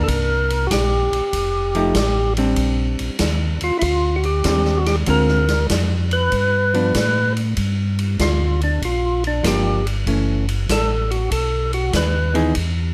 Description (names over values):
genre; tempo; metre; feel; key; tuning
soul jazz organ trio; 96 BPM; 4/4; swing 67% on 8ths; unclear; A4 = 444 Hz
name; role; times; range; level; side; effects
percussive tonewheel organ; melody; 0.0-12.4 s; D4 to B4; -23 LUFS; equal; overdrive, slow rotary speaker
hollow-body jazz guitar; accompaniment; 0.0-12.5 s; D3 to Ab4; -24 LUFS; equal; none
mellow tonewheel organ; bass; 0.0-12.9 s; F1 to A2; -23 LUFS; equal; slow rotary speaker
swinging big-band drum kit; drums; 0.1-12.7 s; hi-hat, kick drum, ride cymbal, snare drum; -27 LUFS; equal; none
room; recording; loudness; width
light reverb; close, detailed microphones; -19 LUFS; mono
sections
0.0-7.6 A section; 7.6-12.9 B section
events
tonewheel organ solo 7.6-12.9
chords
0.1 Csus2; 1.3 F9; 2.6 Bb69; 5.1 Dm7b5; 6.3 G7; 7.6 Gm7; 10.1 F#m7; 11.3 B